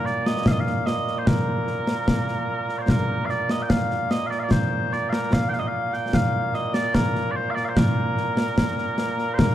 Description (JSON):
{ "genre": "scottish traditional, Scottish pipe music", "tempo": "74 BPM", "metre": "2/4", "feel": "straight", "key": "Bb major", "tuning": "A4 = 440 Hz", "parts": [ { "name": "mellow small bagpipes", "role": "melody", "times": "0.0-9.5 s", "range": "Bb2 to G5", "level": "-24 LUFS", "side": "right 1 dB", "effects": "none" }, { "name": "concert snare drum and concert bass drum", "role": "drums", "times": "0.1-9.5 s", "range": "none", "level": "-23 LUFS", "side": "equal", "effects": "none" } ], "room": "light reverb", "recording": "dark, warm production, lossy compression artefacts", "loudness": "-21 LUFS", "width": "side -12 dB against mid", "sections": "0.0-2.9 A section; 2.9-9.5 A section", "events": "none", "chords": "none", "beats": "0.46 | 1.27 2.08 | 2.90 3.71 | 4.52 5.33 | 6.14 6.95 | 7.76 8.57 | 9.38" }